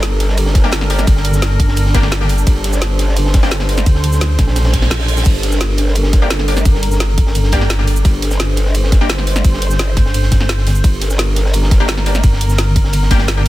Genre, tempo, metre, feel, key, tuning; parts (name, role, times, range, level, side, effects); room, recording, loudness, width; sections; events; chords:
dark technical drum and bass; 172 BPM; 4/4; straight; G minor; A4 = 438 Hz
sweeping resonant pad; sustained chords; 0.0-13.5 s; G3 to C5; -23 LUFS; right 1 dB; lush chorus, sidechain pumping
growl bass; bass; 0.0-12.2 s; G1 to Bb1; -16 LUFS; equal; chorus, overdrive, sidechain pumping
crunchy breakbeat drum kit; drums; 0.0-13.5 s; hi-hat, snare drum; -28 LUFS; equal; high-pass filter on hats, high-pass filter on snare, high-pass filter on room
drum and bass drum kit; drums; 0.0-13.5 s; crash cymbal, hi-hat, ride cymbal, shaker, snare drum; -21 LUFS; right 1 dB
orchestra-hit-like synth stab; stabs; 0.6-3.5, 6.2-9.1, 11.8-13.4 s; Bb3 to G4; -23 LUFS; left 3 dB; built-in reverb, dub echo
electronic kick drum; drums; 0.6-13.2 s; -12 LUFS; equal
pulsing pluck wobble bass; bass; 1.1-13.5 s; G1 to D2; -14 LUFS; equal; chorus
reverse cymbal; sound effects; 4.7-5.3 s; -26 LUFS; right 4 dB
digital ambience; dense, heavily limited modern master; -11 LUFS; side -16 dB against mid
0.0-13.5 A section
reverse cymbal 4.7-5.3
0.0 Gm